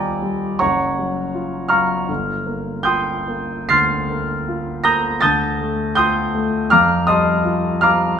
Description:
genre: classical, impressionist solo piano.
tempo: 67-83 BPM.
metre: 4/4.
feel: rubato.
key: unclear.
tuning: A4 = 439 Hz.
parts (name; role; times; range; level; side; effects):
warm grand piano; solo; 0.0-8.2 s; Gb1 to C7; -16 LUFS; equal; none.
room: moderate recital hall reverb, RT60 1.5 s.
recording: minimal, uncompressed stereo recording.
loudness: -16 LUFS.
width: side -7 dB against mid.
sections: 0.0-8.2 A section.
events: none.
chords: 0.0 Ebadd9; 0.6 Gbmaj7; 2.1 Gm11; 5.2 Dm7; 6.7 F9.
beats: 0.61 1.34 | 2.09 2.86 3.70 4.46 | 5.21 5.96 6.71 7.45 | 8.19.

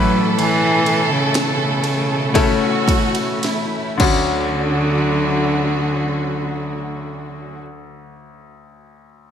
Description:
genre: pop ballad.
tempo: 50-65 BPM.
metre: 4/4.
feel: straight.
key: D major.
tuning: A4 = 440 Hz.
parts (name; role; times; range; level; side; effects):
warm cello; melody; 0.0-7.6 s; C#3 to F#3; -20 LUFS; right 1 dB; none.
warm studio violin section; second line; 0.0-7.6 s; E4 to A4; -24 LUFS; right 2 dB; none.
bright concert grand piano; accompaniment; 0.0-9.3 s; D2 to B4; -22 LUFS; left 4 dB; none.
muted studio string section; sustained chords; 0.0-7.6 s; B2 to F#4; -26 LUFS; right 2 dB; none.
house drum kit; drums; 0.4-4.3 s; crash cymbal, kick drum, ride cymbal, snare drum; -22 LUFS; right 1 dB; gated reverb.
room: moderate plate reverb, RT60 2.6 s.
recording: bright 1980s-style digital production.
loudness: -16 LUFS.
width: side -8 dB against mid.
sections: 0.0-4.6 A section; 4.6-9.3 B section.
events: slowing down 0.0-4.6; drum fill 3.4-4.6.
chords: 0.0 Aadd9; 4.0 Dmaj7.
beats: | 0.38 1.34 2.35 3.43 | 4.59 5.78 6.95 8.13.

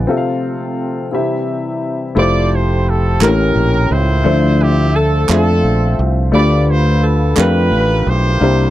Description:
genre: slow gospel.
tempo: 58 BPM (dotted quarters).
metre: 6/8.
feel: straight.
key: F major.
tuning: A4 = 440 Hz.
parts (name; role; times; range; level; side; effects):
warm baby grand piano; accompaniment; 0.0-8.7 s; A2 to B5; -16 LUFS; left 3 dB; none.
mellow French horn section; sustained chords; 0.0-2.2 s; C3 to F4; -25 LUFS; right 3 dB; none.
fingered electric bass; bass; 0.0-8.7 s; F1 to F2; -14 LUFS; equal; none.
warm horn section; melody; 2.2-8.7 s; C4 to D5; -17 LUFS; right 2 dB; none.
group handclap; percussion; 3.2-7.7 s; none; -21 LUFS; right 8 dB; none.
room: little or no reverb.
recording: dry, close 1970s-style studio recording.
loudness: -12 LUFS.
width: side -14 dB against mid.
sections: 0.0-2.2 A section; 2.2-8.7 B section.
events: break 0.1-2.2.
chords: 0.1 F/C; 1.1 C; 2.2 Fmaj9; 3.2 A7b9; 4.3 Dm9; 6.3 G9/D.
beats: | 0.09 1.13 | 2.17 3.21 | 4.25 5.29 | 6.33 7.37 | 8.41.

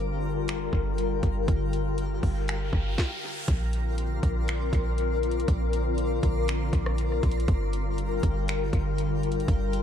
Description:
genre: hip hop, atmospheric cloud-rap.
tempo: 120 BPM.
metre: 4/4.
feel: half-time.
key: Bb major.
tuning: A4 = 438 Hz.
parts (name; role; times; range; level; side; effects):
glassy FM pad; sustained chords; 0.0-9.8 s; D3 to Bb4; -30 LUFS; left 4 dB; ensemble chorus, built-in reverb, sidechain pumping.
warm 808-style bass; bass; 0.0-9.8 s; G1 to Bb1; -28 LUFS; equal; none.
twinkling granular texture; texture; 0.0-9.8 s; G4 to C6; -39 LUFS; right 2 dB; built-in reverb.
trap drum kit; drums; 0.5-9.8 s; finger snaps, hi-hat, kick drum, rim click, snare drum; -28 LUFS; equal; vintage 12-bit sampler grit.
riser; sound effects; 2.1-3.5 s; none; -39 LUFS; equal; none.
room: little or no reverb.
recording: echo-heavy mix.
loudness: -25 LUFS.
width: side -9 dB against mid.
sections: 0.0-3.5 A section; 3.5-9.8 B section.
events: riser 2.1-3.5.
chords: 0.0 Gm7; 3.5 Bbadd9; 7.5 Gm7.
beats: 0.48 0.98 | 1.48 1.98 2.48 2.98 | 3.48 3.98 4.48 4.98 | 5.48 5.98 6.48 6.98 | 7.48 7.98 8.48 8.98 | 9.48.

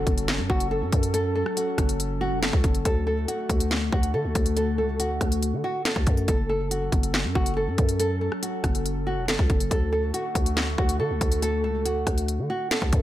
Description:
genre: hip hop, drill.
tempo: 140 BPM.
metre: 4/4.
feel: half-time.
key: F# minor.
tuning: A4 = 442 Hz.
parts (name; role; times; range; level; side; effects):
nylon-string guitar; melody; 0.0-13.0 s; F#4 to A4; -28 LUFS; right 1 dB; digital delay.
warbly tape-like pad; sustained chords; 0.0-13.0 s; D3 to A4; -33 LUFS; left 1 dB; chorus, built-in reverb.
growling 808-style bass; bass; 0.0-13.0 s; E1 to D3; -27 LUFS; equal; none.
impact; sound effects; 0.0-1.1 s; none; -43 LUFS; equal; none.
drill drum kit; drums; 0.1-13.0 s; handclaps, hi-hat, kick drum, rim click, snare drum; -24 LUFS; equal; none.
room: digital ambience.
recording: none.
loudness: -22 LUFS.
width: side -13 dB against mid.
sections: 0.0-13.0 A section.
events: impact 0.0-1.1.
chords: 0.0 F#m; 2.9 D; 6.3 F#m; 9.7 D.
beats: 0.28 0.71 | 1.14 1.57 2.00 2.42 | 2.85 3.28 3.71 4.14 | 4.57 5.00 5.42 5.85 | 6.28 6.71 7.14 7.57 | 8.00 8.43 8.85 9.28 | 9.71 10.14 10.57 11.00 | 11.43 11.85 12.28 12.71.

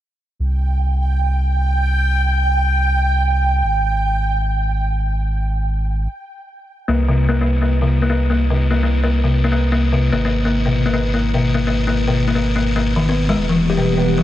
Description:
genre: IDM.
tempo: 148 BPM.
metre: 4/4.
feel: swing 62% on 16ths.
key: unclear.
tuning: A4 = 441 Hz.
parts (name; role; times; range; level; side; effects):
warm sub bass; bass; 0.4-14.2 s; E1 to C2; -18 LUFS; right 1 dB; tube saturation.
bubbling stepped-filter texture; texture; 0.7-6.1 s; G5; -22 LUFS; right 2 dB; chorus, built-in reverb.
buzzing kalimba; arpeggios; 6.9-14.2 s; Cb3 to G4; -17 LUFS; left 3 dB; vintage 12-bit sampler grit, low-pass filter, digital delay.
warbly tape-like pad; sustained chords; 13.4-14.2 s; E3 to B4; -20 LUFS; right 2 dB; chorus, built-in reverb.
room: light reverb.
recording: none.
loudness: -15 LUFS.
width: side -13 dB against mid.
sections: 0.4-6.9 A section; 6.9-14.2 B section.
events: filter sweep on sub bass 0.4-6.9; stop 6.1-6.9; filter sweep on kalimba 6.9-14.2.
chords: 0.4 C5; 3.6 N.C.; 6.9 Bbsus2/C; 10.1 Absus2; 13.4 Em.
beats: | 0.40 0.80 1.21 1.61 | 2.02 2.42 2.83 3.23 | 3.64 4.04 4.45 4.85 | 5.26 5.67 6.07 6.48 | 6.88 7.29 7.69 8.10 | 8.50 8.91 9.31 9.72 | 10.12 10.53 10.94 11.34 | 11.75 12.15 12.56 12.96 | 13.37 13.77 14.18.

